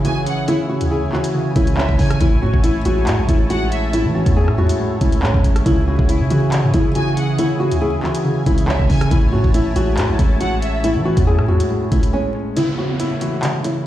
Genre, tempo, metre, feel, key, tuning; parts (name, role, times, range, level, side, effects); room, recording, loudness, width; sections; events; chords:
hip hop, drill; 139 BPM; 4/4; half-time; C# minor; A4 = 440 Hz
flamenco guitar; melody; 0.0-13.8 s; C#4 to G#4; -22 LUFS; equal; ping-pong delay
warm symphonic violin section; second line; 0.0-3.9, 7.0-10.8 s; E5 to G#5; -28 LUFS; left 1 dB; ping-pong delay
dark grand piano; accompaniment; 0.0-13.9 s; A2 to E4; -22 LUFS; left 1 dB
warm analog pad; sustained chords; 0.0-12.5 s; E4 to A5; -28 LUFS; right 1 dB; chorus
long sustained 808-style bass; bass; 0.0-12.1 s; A1 to E3; -19 LUFS; right 1 dB
drill drum kit; drums; 0.0-13.8 s; handclaps, hi-hat, kick drum, rim click; -18 LUFS; equal
downlifter; sound effects; 12.6-13.9 s; -27 LUFS; equal
little or no reverb; played on a big sound system in a bare room, large studio reverb, vinyl crackle; -15 LUFS; side -13 dB against mid
0.0-12.6 A section; 12.6-13.9 B section
break 12.1-12.6, 12.6-13.9
0.0 C#m; 2.2 Amaj7; 5.7 C#m; 9.1 Amaj7; 12.6 C#m